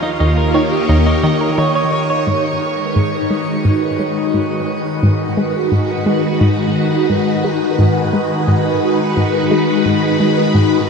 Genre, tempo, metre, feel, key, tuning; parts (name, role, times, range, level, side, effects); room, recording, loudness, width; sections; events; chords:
ambient, sequencer-driven space music; 87 BPM; 4/4; straight; G# minor; A4 = 439 Hz
phased string machine; sustained chords; 0.0-10.9 s; Eb3 to Db5; -15 LUFS; left 1 dB; ensemble chorus, phaser
twelve-string electric guitar; arpeggios; 0.0-2.2 s; Eb4 to Eb5; -22 LUFS; right 3 dB; auto-pan, analog delay
analog pluck; riff; 0.2-10.8 s; Eb2 to G#3; -18 LUFS; equal; chorus, analog delay
wet shimmer reverb, RT60 8.1 s; dark, warm production; -13 LUFS; side -5 dB against mid
0.0-2.3 A section; 2.3-10.9 B section
filter sweep on synth arpeggio sound 2.3-10.9
0.0 Eb7; 2.3 G#m7